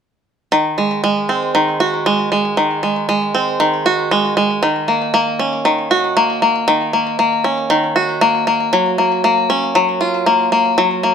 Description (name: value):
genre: folktronica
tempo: 117 BPM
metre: 4/4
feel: straight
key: unclear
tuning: A4 = 436 Hz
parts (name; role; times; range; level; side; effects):
- bluegrass banjo; arpeggios; 0.5-11.1 s; Eb3 to Gb4; -13 LUFS; equal; ping-pong delay
room: moderate studio reverb, RT60 0.6 s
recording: none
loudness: -13 LUFS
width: side -7 dB against mid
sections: 0.5-11.1 A section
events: none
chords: 0.5 Ab7; 4.6 Ebm7; 8.7 Gbmaj7